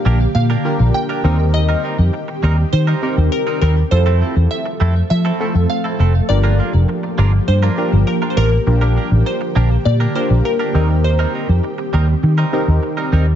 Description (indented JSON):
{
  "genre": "pop",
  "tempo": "101 BPM",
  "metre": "4/4",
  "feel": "straight",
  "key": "unclear",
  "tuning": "A4 = 440 Hz",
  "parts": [
    { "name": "glassy wavetable pluck", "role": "melody", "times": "0.0-12.8 s", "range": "Bb4 to G5", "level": "-24 LUFS", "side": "equal", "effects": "chorus, tape echo" },
    { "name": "warm analog keys", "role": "accompaniment", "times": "0.0-13.3 s", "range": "C4 to Bb4", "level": "-23 LUFS", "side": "left 2 dB", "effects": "chorus" },
    { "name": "ethereal airy pad", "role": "sustained chords", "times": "0.0-13.4 s", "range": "D3 to A4", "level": "-23 LUFS", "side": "right 1 dB", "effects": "ensemble chorus, built-in reverb, tremolo" },
    { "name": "direct-recorded clean electric guitar", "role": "riff", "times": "0.1-13.3 s", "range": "G3 to Bb4", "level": "-25 LUFS", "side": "right 5 dB", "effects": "wide subtle chorus" },
    { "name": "vintage muted fingered electric bass", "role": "bass", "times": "0.1-13.3 s", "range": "F1 to F3", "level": "-13 LUFS", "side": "equal", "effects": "none" }
  ],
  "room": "digital ambience",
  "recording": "echo-heavy mix, nothing above 7.7 kHz",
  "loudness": "-13 LUFS",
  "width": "side -10 dB against mid",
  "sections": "0.0-13.4 A section",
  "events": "none",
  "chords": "0.0 Bb6; 1.2 Eb6; 3.9 Fmaj7; 6.3 Gm7; 8.7 Bb6; 10.7 Eb6"
}